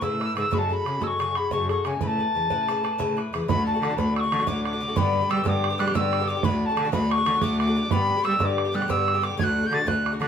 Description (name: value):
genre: celtic folk, Celtic slip jig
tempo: 122 BPM (dotted quarters)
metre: 9/8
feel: straight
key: A major, D major from 3.5 s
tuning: A4 = 440 Hz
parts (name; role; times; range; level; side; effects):
- mellow tin whistle; melody; 0.0-10.3 s; G#5 to A6; -25 LUFS; equal; none
- Irish bouzouki; accompaniment; 0.0-10.3 s; G2 to B4; -29 LUFS; left 5 dB; none
- rich cello; bass; 0.0-10.3 s; D2 to G3; -27 LUFS; equal; none
- bodhran; percussion; 0.0-10.3 s; none; -29 LUFS; right 5 dB; none
room: moderate studio reverb, RT60 0.6 s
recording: minimal, uncompressed stereo recording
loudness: -21 LUFS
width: side -8 dB against mid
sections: 0.0-3.5 A section; 3.5-10.3 B section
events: none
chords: 0.0 Aadd9; 0.5 F#madd9; 2.0 Aadd9; 3.5 D; 5.0 G; 6.4 D; 7.9 G; 9.4 D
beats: 0.03 | 0.53 1.02 1.52 | 2.01 2.50 3.00 | 3.49 3.98 4.47 | 4.97 5.46 5.95 | 6.44 6.93 7.42 | 7.91 8.40 8.89 | 9.38 9.87